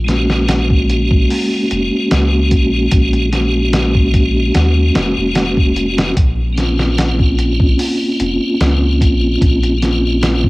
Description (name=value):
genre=trip hop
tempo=74 BPM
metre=4/4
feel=straight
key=unclear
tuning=A4 = 440 Hz
part: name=tonewheel organ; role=accompaniment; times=0.0-10.5 s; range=Ab3 to Gb4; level=-15 LUFS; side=equal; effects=overdrive, chorus vibrato, fast rotary speaker, harmonic tremolo, cassette tape, tape echo
part: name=soft dub sub bass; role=bass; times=0.0-10.5 s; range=F1 to Eb2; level=-16 LUFS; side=equal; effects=none
part: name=dusty soul sampler-style drum kit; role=drums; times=0.1-10.5 s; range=hi-hat, kick drum, snare drum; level=-16 LUFS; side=equal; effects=cassette tape
room=little or no reverb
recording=home recording on cassette, vinyl crackle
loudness=-12 LUFS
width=side -22 dB against mid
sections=0.0-10.5 A section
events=none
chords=0.0 Gbadd9; 6.2 Bbmadd9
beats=0.49 1.30 2.11 | 2.92 3.73 4.54 5.35 | 6.17 6.98 7.79 8.60 | 9.41 10.22